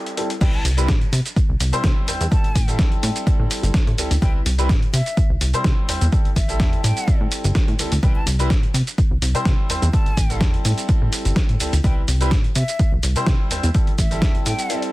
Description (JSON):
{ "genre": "filtered disco house", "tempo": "126 BPM", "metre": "4/4", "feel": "straight", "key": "C major", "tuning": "A4 = 439 Hz", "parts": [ { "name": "bright grand piano", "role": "accompaniment", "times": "0.0-14.9 s", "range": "G3 to C5", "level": "-27 LUFS", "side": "left 1 dB", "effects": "phaser, sidechain pumping, low-pass filter" }, { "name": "dusty soul sampler-style drum kit", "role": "drums", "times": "0.1-14.9 s", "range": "crash cymbal, hi-hat, shaker, snare drum", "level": "-26 LUFS", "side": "equal", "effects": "overdrive, sidechain pumping on hats, sidechain pumping on cymbals, sidechain pumping on perc" }, { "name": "breathy mellow silver concert flute", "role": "melody", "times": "0.4-14.8 s", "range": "E5 to A5", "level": "-31 LUFS", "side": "left 1 dB", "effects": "sidechain pumping, low-pass filter" }, { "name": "plucky analog bass", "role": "bass", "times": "0.4-14.5 s", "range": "G1 to C3", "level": "-21 LUFS", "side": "equal", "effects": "sidechain pumping, low-pass filter" }, { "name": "electronic kick drum", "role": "drums", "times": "0.4-14.3 s", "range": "none", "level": "-18 LUFS", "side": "equal", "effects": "overdrive" } ], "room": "little or no reverb", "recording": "dense, heavily limited modern master", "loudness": "-17 LUFS", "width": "side -18 dB against mid", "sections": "0.4-14.9 A section", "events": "drop 0.4-14.9", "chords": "0.4 Cmaj7; 2.3 Am7; 4.2 Cmaj7; 6.1 Am7; 8.0 Cmaj7; 9.9 Am7; 11.8 Cmaj7; 13.7 Am7" }